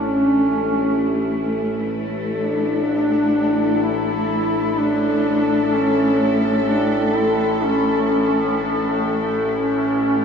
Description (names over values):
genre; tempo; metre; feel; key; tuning
dark ambient drone; 63 BPM; 4/4; straight; A major; A4 = 442 Hz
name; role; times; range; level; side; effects
warm duduk; melody; 0.0-10.2 s; C#4 to E4; -20 LUFS; equal; diffuse ambient delay
warm studio cello section; sustained chords; 0.0-10.2 s; A3 to A4; -23 LUFS; left 2 dB; none
overtone-sweeping drone; drone; 0.0-10.2 s; A1 to A2; -22 LUFS; equal; chorus, built-in reverb
room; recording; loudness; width
wet cathedral reverb, RT60 6.2 s; in a vast, echoing space, cassette tape; -17 LUFS; side -6 dB against mid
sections
0.0-10.2 A section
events
none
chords
0.0 A